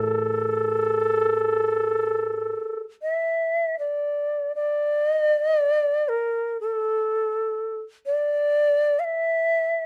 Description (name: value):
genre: japanese traditional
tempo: 58-63 BPM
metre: 4/4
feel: rubato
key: unclear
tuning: A4 = 440 Hz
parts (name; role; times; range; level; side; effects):
- bright reedy shakuhachi; melody; 0.0-9.9 s; A4 to F5; -24 LUFS; equal; none
- koto; accompaniment; 0.0-2.5 s; A2 to E3; -38 LUFS; equal; none
room: light reverb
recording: dark, warm production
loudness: -24 LUFS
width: mono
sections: 0.0-4.1 A section; 4.1-9.9 B section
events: none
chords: none